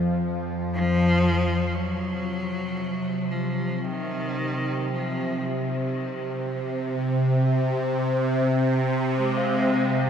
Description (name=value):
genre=dark ambient drone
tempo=free time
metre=none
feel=none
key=F phrygian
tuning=A4 = 440 Hz
part: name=bowed-like drone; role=drone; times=0.0-10.1 s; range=F2 to F3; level=-24 LUFS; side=equal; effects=built-in reverb, phaser
part: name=rich cello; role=melody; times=0.7-10.1 s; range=Eb3 to Ab3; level=-27 LUFS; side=left 1 dB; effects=ping-pong delay
part: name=tubular bells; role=arpeggios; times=9.4-10.1 s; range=F4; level=-32 LUFS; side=left 1 dB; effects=none
room=wet huge ambient reverb, RT60 7.0 s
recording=none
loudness=-22 LUFS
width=side -8 dB against mid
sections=0.0-1.8 A section; 1.8-10.1 B section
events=fade-in on tubular bells 1.8-10.1; filter sweep on synth drone 1.8-10.1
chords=0.0 N.C.; 1.8 F5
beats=free time